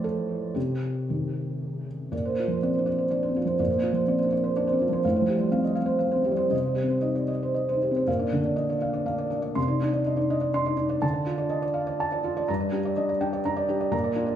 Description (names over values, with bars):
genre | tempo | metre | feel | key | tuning
neoclassical minimalist piano | 112-126 BPM | 3/4 | rubato | Bb major | A4 = 438 Hz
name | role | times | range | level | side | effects
felt-muted upright piano | solo | 0.0-14.4 s | G2 to C6 | -24 LUFS | equal | tape echo
room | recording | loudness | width
wet studio reverb, RT60 0.8 s | heard from further back in the room, studio reverb | -24 LUFS | side -10 dB against mid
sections
0.0-2.1 A section; 2.1-8.1 B section; 8.1-14.4 C section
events
none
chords
0.0 F/A; 0.6 Cm; 2.1 Bbadd9; 5.0 Fadd9/A; 6.5 Cm; 8.1 Bb; 9.6 Cmadd9; 11.0 Dm; 12.5 Gm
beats
0.03 | 0.56 1.09 1.61 | 2.12 2.62 3.11 | 3.59 4.08 4.56 | 5.04 5.52 6.01 | 6.52 7.04 7.56 | 8.08 8.58 9.08 | 9.57 10.06 10.54 | 11.03 11.51 12.00 | 12.48 12.97 13.45 | 13.93